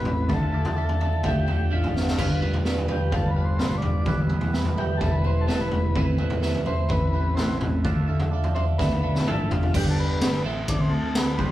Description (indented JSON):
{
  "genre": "psychedelic rock",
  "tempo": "127 BPM",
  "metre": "4/4",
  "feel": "straight",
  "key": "A minor",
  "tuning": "A4 = 440 Hz",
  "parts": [
    { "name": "overdriven combo organ", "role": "melody", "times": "0.0-11.5 s", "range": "E4 to D5", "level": "-32 LUFS", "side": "left 3 dB", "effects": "none" },
    { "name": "twelve-string electric guitar", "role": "riff", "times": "0.0-11.5 s", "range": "D3 to E5", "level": "-29 LUFS", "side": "right 5 dB", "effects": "phaser" },
    { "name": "fuzz picked electric bass", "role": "bass", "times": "0.0-11.5 s", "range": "E1 to D3", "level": "-30 LUFS", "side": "equal", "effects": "overdrive" },
    { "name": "bowed-like drone", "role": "drone", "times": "0.0-9.8 s", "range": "A1", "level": "-40 LUFS", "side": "left 2 dB", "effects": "none" },
    { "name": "raw garage drum kit", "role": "drums", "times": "0.1-11.5 s", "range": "crash cymbal, kick drum, ride cymbal, snare drum, toms", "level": "-23 LUFS", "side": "equal", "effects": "none" },
    { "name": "congas", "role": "percussion", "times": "0.1-9.7 s", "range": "none", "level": "-39 LUFS", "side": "left 3 dB", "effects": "none" }
  ],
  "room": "light reverb",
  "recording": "band playing live in one room",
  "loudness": "-21 LUFS",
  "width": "side -14 dB against mid",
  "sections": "0.0-9.7 A section; 9.7-11.5 B section",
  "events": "transistor combo organ solo 0.0-9.7; drum fill 2.0, 8.8-9.7",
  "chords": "0.3 Dmadd9; 2.2 G7; 4.1 Em; 6.0 Amadd9; 7.9 Dmadd9; 9.7 G; 10.5 Am"
}